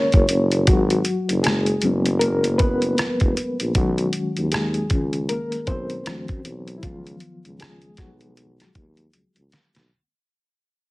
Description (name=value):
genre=R&B, neo-soul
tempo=78 BPM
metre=4/4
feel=swing 60% on 16ths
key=unclear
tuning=A4 = 440 Hz
part: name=reed electric piano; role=accompaniment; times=0.0-9.9 s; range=D#3 to C#5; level=-23 LUFS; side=left 1 dB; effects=overdrive, fast tremolo
part: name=breathy tuba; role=bass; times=0.1-9.9 s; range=E#1 to F#2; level=-24 LUFS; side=equal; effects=none
part: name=dusty soul sampler-style drum kit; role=drums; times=0.1-9.9 s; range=hi-hat, kick drum, rim click, snare drum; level=-21 LUFS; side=equal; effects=none
room=moderate studio reverb, RT60 0.6 s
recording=heavily compressed radio sound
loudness=-19 LUFS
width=side -21 dB against mid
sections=0.0-9.9 A section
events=fade-out 0.0-9.9; reed electric piano solo 0.0-9.9; drum fill 9.1-9.9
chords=0.0 F#maj7; 0.7 G#m11; 3.7 B69; 6.1 D9; 6.8 C#9sus4